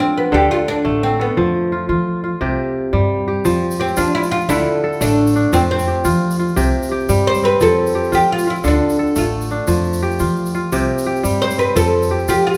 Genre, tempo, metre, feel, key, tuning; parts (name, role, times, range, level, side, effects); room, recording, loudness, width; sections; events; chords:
west african traditional, West African string and xylophone music; 116 BPM (dotted quarters); 12/8; straight; F major; A4 = 440 Hz
oud; melody; 0.0-12.6 s; B3 to C5; -19 LUFS; equal
kora; arpeggios; 0.0-12.6 s; C3 to A4; -21 LUFS; equal
upright bass; bass; 0.0-12.6 s; A1 to F3; -24 LUFS; equal
tube shaker; percussion; 3.5-12.6 s; -34 LUFS; equal
wet recital hall reverb, RT60 1.7 s; recorded in a church or concert hall; -17 LUFS; mono
0.0-3.5 A section; 3.5-12.6 B section
oud solo 3.5-12.6
0.3 D5; 1.4 F; 2.4 C5; 3.5 Dmadd11/F (rootless); 4.5 Dm; 5.5 F5; 6.6 C5; 7.6 F; 8.6 Dm; 9.7 Fsus2; 10.7 C5; 11.8 F